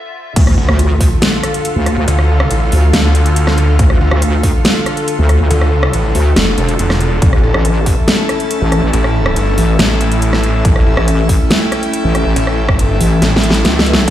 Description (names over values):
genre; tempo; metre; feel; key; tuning
heavy wobble dubstep; 140 BPM; 4/4; half-time; D harmonic minor; A4 = 440 Hz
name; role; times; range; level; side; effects
evolving wavetable pad; sustained chords; 0.0-14.1 s; D2 to E5; -21 LUFS; right 1 dB; chorus, built-in reverb, vintage 12-bit sampler grit, sidechain pumping
wobble bass; bass; 0.4-14.1 s; E1 to D2; -12 LUFS; equal; chorus, overdrive
dubstep drum kit; drums; 0.4-14.1 s; crash cymbal, hi-hat, rim click, snare drum; -16 LUFS; equal; none
electronic kick drum; drums; 0.4-1.1, 3.8-4.5, 7.2-8.0, 10.6-14.1 s; none; -12 LUFS; equal; none
impact; sound effects; 0.4-2.1 s; none; -22 LUFS; equal; none
snarling distorted saw bass; bass; 0.6-13.6 s; E1 to D2; -14 LUFS; equal; distortion, overdrive
airy breathy pad; texture; 0.7-14.1 s; C#4 to A5; -20 LUFS; left 3 dB; chorus, sidechain pumping
room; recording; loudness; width
light reverb; played on a big sound system in a bare room, stone room reverb, high-pass filter; -10 LUFS; side -12 dB against mid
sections
0.4-14.1 A section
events
break 0.0-0.4; drop 0.4-14.1; impact 0.4-2.1; drum fill 13.2-14.1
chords
0.4 Dm; 7.2 A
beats
| 0.36 0.79 1.22 1.65 | 2.08 2.51 2.94 3.36 | 3.79 4.22 4.65 5.08 | 5.51 5.93 6.36 6.79 | 7.22 7.65 8.08 8.51 | 8.94 9.36 9.79 10.22 | 10.65 11.08 11.51 11.94 | 12.36 12.79 13.22 13.65 | 14.08